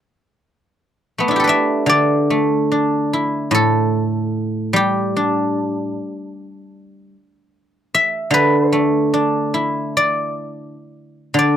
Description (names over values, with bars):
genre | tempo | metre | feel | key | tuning
chinese traditional, Chinese solo plucked strings | 74 BPM | 4/4 | uneven beats, rubato | D zhi mode | A4 = 440 Hz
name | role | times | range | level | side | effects
guzheng | solo | 0.0-11.6 s | A2 to E5 | -15 LUFS | equal | none
room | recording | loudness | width
light reverb | dry, close 1970s-style studio recording | -15 LUFS | side -9 dB against mid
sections
0.0-1.9 A section; 1.9-11.6 B section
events
none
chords
none